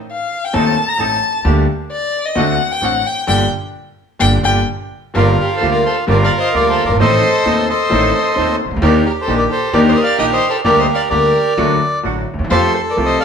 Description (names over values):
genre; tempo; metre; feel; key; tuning
tango; 131 BPM; 4/4; rubato; G minor; A4 = 440 Hz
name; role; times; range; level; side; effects
warm violin; second line; 0.1-13.2 s; G4 to Bb5; -18 LUFS; left 3 dB; none
bright concert grand piano; accompaniment; 0.5-13.2 s; Eb1 to A4; -20 LUFS; left 1 dB; none
bandoneon; stabs; 0.5-13.2 s; A3 to A4; -24 LUFS; right 5 dB; none
upright bass; bass; 0.5-13.2 s; F#1 to F2; -18 LUFS; equal; none
bandoneon; melody; 5.2-13.2 s; F4 to G5; -16 LUFS; right 1 dB; none
room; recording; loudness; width
moderate large studio reverb, RT60 1.1 s; band playing live in one room; -12 LUFS; side -7 dB against mid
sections
0.0-5.2 A section; 5.2-13.2 B section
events
violin solo 0.0-5.2; band accent 3.3-5.2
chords
0.0 Adim; 1.5 Gm/D; 2.4 D7; 3.3 Gm; 5.2 Gm7; 7.0 Adim; 8.8 Ebmaj7; 10.6 Gm/D; 11.6 D; 12.5 Fadd9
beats
0.09 0.54 1.00 | 1.45 1.91 2.36 2.82 | 3.29 3.75 4.21 4.68 | 5.16 5.62 6.08 6.54 | 7.00 7.46 7.91 8.37 | 8.82 9.28 9.73 10.19 | 10.64 11.10 11.57 12.04 | 12.50 12.97